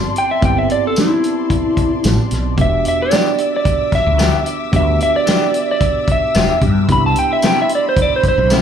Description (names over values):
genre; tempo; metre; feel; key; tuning
straight-eighth soul blues; 111 BPM; 4/4; straight; E minor; A4 = 440 Hz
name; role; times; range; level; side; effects
tine electric piano; accompaniment; 0.0-8.6 s; B3 to G4; -22 LUFS; right 6 dB; medium stereo tremolo, slapback echo
warm studio string section; sustained chords; 0.0-8.6 s; D5 to E6; -27 LUFS; left 4 dB; none
electric slide guitar; melody; 0.2-8.5 s; E4 to B5; -16 LUFS; equal; slapback echo
warm soul drum kit; drums; 0.2-8.6 s; hi-hat, kick drum, snare drum, tambourine; -18 LUFS; equal; slapback echo
mellow fretless electric bass; bass; 0.4-8.6 s; E1 to G2; -16 LUFS; left 1 dB; ensemble chorus
electric guitar through a small old amp; stabs; 3.1-8.6 s; C3 to G4; -21 LUFS; left 6 dB; slapback echo
room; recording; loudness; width
light reverb, small room ambience; live gig heard through the venue's PA, club reverb; -13 LUFS; side -8 dB against mid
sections
0.0-8.6 A section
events
electric slide guitar solo 0.0-8.6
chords
0.0 Am7; 2.6 Em7; 6.9 Cmaj7